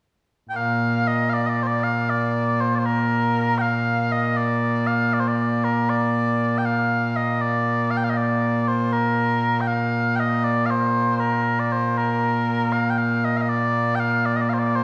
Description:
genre	scottish traditional, Scottish pipe music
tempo	79 BPM (dotted quarters)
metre	6/8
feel	straight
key	Bb major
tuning	A4 = 442 Hz
part	mellow small bagpipes	solo	0.5-14.8 s	Bb2 to G5	-22 LUFS	equal	none
room	wet recital hall reverb, RT60 1.7 s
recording	recorded in a church or concert hall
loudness	-22 LUFS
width	mono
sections	0.0-1.3 A section; 1.3-13.5 B section; 13.5-14.8 B section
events	none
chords	none

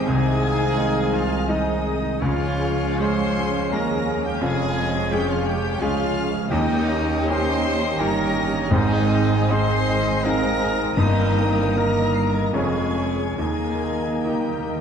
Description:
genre	classical, romantic movement for piano and orchestra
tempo	68-87 BPM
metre	3/4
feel	rubato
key	Ab major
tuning	A4 = 444 Hz
part	clear baby grand piano	melody	0.0-14.8 s	F1 to Db5	-24 LUFS	left 1 dB	none
part	warm studio violin section	melody	0.0-14.8 s	Eb6 to C7	-34 LUFS	left 4 dB	none
part	clear clarinet	second line	0.0-14.8 s	C5 to G5	-34 LUFS	left 3 dB	none
part	mellow oboe	second line	0.0-14.8 s	Db5 to F5	-36 LUFS	right 1 dB	none
part	mellow silver concert flute	second line	0.0-14.8 s	G5 to Db6	-35 LUFS	left 4 dB	none
part	rich studio violin section	second line	0.0-14.8 s	Eb5 to C6	-34 LUFS	left 2 dB	none
part	mellow bassoon	accompaniment	0.0-14.8 s	Ab3 to Db4	-31 LUFS	right 1 dB	none
part	warm studio viola section	accompaniment	0.0-14.8 s	Bb3 to Bb4	-32 LUFS	right 1 dB	none
part	clear trombone section	sustained chords	0.0-14.8 s	Eb3 to Bb3	-30 LUFS	right 3 dB	none
part	bright trumpet section	stabs	0.0-14.8 s	Eb4 to C5	-28 LUFS	equal	none
part	rich studio double bass section	bass	0.0-14.8 s	F1 to Eb2	-30 LUFS	right 4 dB	none
part	warm studio cello section	bass	0.0-14.8 s	C2 to Ab2	-29 LUFS	right 3 dB	none
part	mellow French horn section	sustained chords	0.1-14.8 s	Bb3 to Ab4	-30 LUFS	left 3 dB	none
part	timpani	percussion	6.5-7.6, 13.4-14.8 s	Eb3	-32 LUFS	left 1 dB	none
room	wet concert hall reverb, RT60 1.8 s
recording	dark, warm production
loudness	-19 LUFS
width	side -7 dB against mid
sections	0.0-14.8 A section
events	timpani fill 13.4-14.8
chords	0.1 Ab/C; 2.2 Db; 4.4 Db/F; 6.5 Eb7; 8.7 Ab; 11.0 Eb/G; 12.5 Db/F; 13.4 Eb

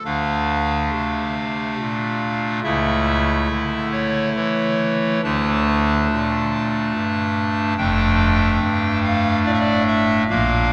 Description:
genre	classical, chorale-style piece for pipe organ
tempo	70 BPM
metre	3/4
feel	straight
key	D minor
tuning	A4 = 440 Hz
part	pipe organ, clarinet reed	solo	0.0-10.7 s	F1 to A5	-20 LUFS	equal	none
room	wet cathedral reverb, RT60 4.3 s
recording	none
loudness	-20 LUFS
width	mono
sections	0.1-10.7 A section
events	none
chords	0.1 Dm; 2.6 A/C#; 5.2 D5; 7.8 Dm/F

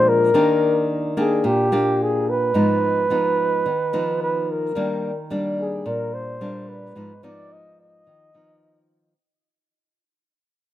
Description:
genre	bossa nova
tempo	109 BPM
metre	4/4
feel	straight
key	Eb major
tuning	A4 = 440 Hz
part	breathy flugelhorn	melody	0.0-8.9 s	G4 to Eb5	-20 LUFS	equal	none
part	nylon-string guitar	accompaniment	0.0-9.1 s	Ab2 to G4	-23 LUFS	equal	none
room	light reverb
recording	minimal, uncompressed stereo recording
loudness	-18 LUFS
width	side -13 dB against mid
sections	0.3-9.2 A section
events	fade-out 0.3-9.2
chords	0.3 Ebmaj7; 2.5 Abm6; 4.8 Ebmaj7; 7.0 Abm6

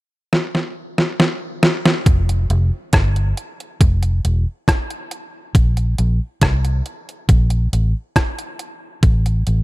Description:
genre	lovers rock reggae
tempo	69 BPM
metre	4/4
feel	straight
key	F major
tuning	A4 = 440 Hz
part	detuned 8-bit digital drum machine	drums	0.3-9.6 s	hi-hat, kick drum, rim click, snare drum	-16 LUFS	equal	overdrive
part	vintage muted fingered electric bass	bass	2.1-9.6 s	E1 to C2	-16 LUFS	equal	none
room	digital ambience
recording	none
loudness	-15 LUFS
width	side -19 dB against mid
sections	0.0-2.1 A section; 2.1-9.6 B section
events	drum fill 0.3-2.1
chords	none

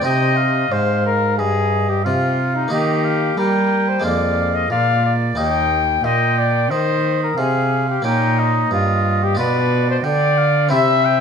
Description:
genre	classical, baroque-style sonata movement with continuo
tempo	90 BPM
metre	4/4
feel	straight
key	unclear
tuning	A4 = 440 Hz
part	mellow trumpet	melody	0.0-11.2 s	Eb4 to G5	-19 LUFS	left 6 dB	none
part	clear oboe	second line	0.0-11.2 s	D5 to G5	-22 LUFS	right 7 dB	none
part	harpsichord	accompaniment	0.0-11.2 s	Eb2 to F4	-25 LUFS	left 1 dB	none
part	rich cello	bass	0.0-11.2 s	Eb2 to G3	-20 LUFS	right 2 dB	none
room	moderate recital hall reverb, RT60 1.3 s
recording	none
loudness	-15 LUFS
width	side -6 dB against mid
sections	0.0-11.2 A section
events	none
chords	0.0 Cm; 2.7 Eb; 4.1 Bb7/F; 5.4 Eb; 8.0 Gdim/Bb; 9.4 Bdim

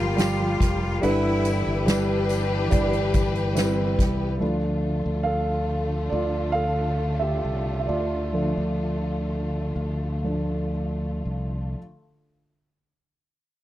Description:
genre	pop ballad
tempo	57-71 BPM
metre	4/4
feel	straight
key	D minor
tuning	A4 = 441 Hz
part	bright studio cello section	second line	0.0-4.4 s	B3 to F4	-31 LUFS	left 2 dB	none
part	warm concert grand piano	accompaniment	0.0-11.8 s	G2 to F5	-26 LUFS	right 1 dB	none
part	warm studio string section	sustained chords	0.0-11.7 s	D3 to B4	-31 LUFS	left 3 dB	none
part	fingered electric bass	bass	0.0-11.7 s	F1 to D2	-27 LUFS	equal	none
part	soft-mallet drum kit	drums	0.2-4.2 s	hi-hat, kick drum, snare drum	-25 LUFS	equal	none
part	tambourine	percussion	0.2-3.8 s	none	-42 LUFS	left 15 dB	none
room	little or no reverb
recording	dry, close 1970s-style studio recording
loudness	-22 LUFS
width	side -14 dB against mid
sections	0.0-4.4 A section; 4.4-11.8 B section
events	slowing down 4.4-11.8; grand piano solo 4.4-11.8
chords	0.0 Gm7; 1.0 G6; 4.4 Dm

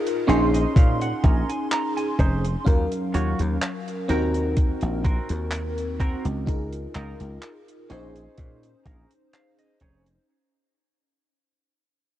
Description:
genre	vaporwave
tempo	63 BPM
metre	4/4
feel	straight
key	Bb minor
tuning	A4 = 440 Hz
part	FM electric piano with soft pad layer	accompaniment	0.0-10.3 s	Gb3 to C6	-27 LUFS	equal	wide subtle chorus, cassette tape, analog delay
part	damped 70s drum kit	drums	0.1-10.2 s	handclaps, hi-hat	-34 LUFS	right 1 dB	none
part	semi-hollow electric guitar	riff	0.3-10.3 s	C4 to Bb5	-30 LUFS	right 3 dB	lush chorus, analog delay
part	dry thumbed slap bass	bass	0.3-10.2 s	F1 to Bb2	-26 LUFS	equal	none
part	electronic kick drum	drums	0.8-10.0 s	none	-19 LUFS	equal	none
room	studio ambience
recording	dark, warm production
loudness	-21 LUFS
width	side -13 dB against mid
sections	0.0-10.3 A section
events	clean electric guitar fill 0.0-2.7, 8.9-10.3; fade-out 0.1-10.3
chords	0.3 Bbm11; 2.7 Ebm9; 4.1 Ebm6; 6.5 Db69; 7.9 Bbm11

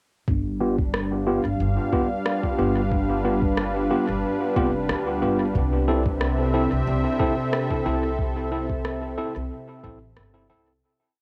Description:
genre	ambient dub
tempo	91 BPM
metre	4/4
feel	swing 54% on 16ths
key	G mixolydian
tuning	A4 = 437 Hz
part	warm analog pad	sustained chords	0.3-10.8 s	C3 to F5	-28 LUFS	equal	chorus, cassette tape
part	upright bass	bass	0.3-10.8 s	F1 to D2	-30 LUFS	equal	tube saturation
part	electronic kick drum	drums	0.3-10.0 s	none	-29 LUFS	equal	overdrive, cassette tape
part	tine electric piano	stabs	0.6-10.7 s	B3 to A4	-28 LUFS	equal	overdrive, low-pass filter, cassette tape, dub echo
part	electronic rim click	drums	0.9-10.3 s	none	-34 LUFS	equal	cassette tape, dub echo
room	light reverb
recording	home recording on cassette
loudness	-24 LUFS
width	mono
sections	0.3-10.8 groove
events	filter sweep on tine electric piano 0.3-10.8; fade-out 7.3-10.8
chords	0.3 G7; 5.6 C6

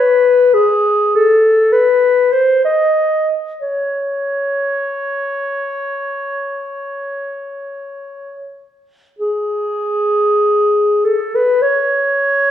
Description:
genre	classical, free, expressive piece for unaccompanied clarinet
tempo	34-54 BPM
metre	4/4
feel	rubato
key	unclear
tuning	A4 = 440 Hz
part	dark clarinet	solo	0.0-12.5 s	G#4 to D#5	-13 LUFS	left 1 dB	none
room	wet recital hall reverb, RT60 1.4 s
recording	heard from further back in the room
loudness	-13 LUFS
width	side -10 dB against mid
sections	0.0-9.2 A section; 9.2-12.5 A section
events	none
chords	none

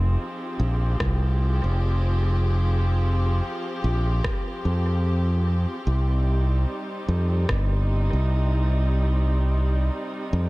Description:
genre	ambient dub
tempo	74 BPM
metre	4/4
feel	swing 58% on 16ths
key	F minor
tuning	A4 = 440 Hz
part	dark studio string section	sustained chords	0.0-10.5 s	C3 to Ab4	-30 LUFS	equal	none
part	modern bright fingered electric bass	bass	0.0-10.5 s	F1 to F2	-21 LUFS	equal	none
part	electronic kick drum	drums	1.0-7.7 s	none	-28 LUFS	equal	none
part	electronic rim click	drums	1.0-7.7 s	none	-33 LUFS	equal	dub echo
room	little or no reverb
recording	dark, warm production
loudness	-21 LUFS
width	side -21 dB against mid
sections	0.0-10.5 A section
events	none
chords	0.0 Fm7; 5.9 Cm

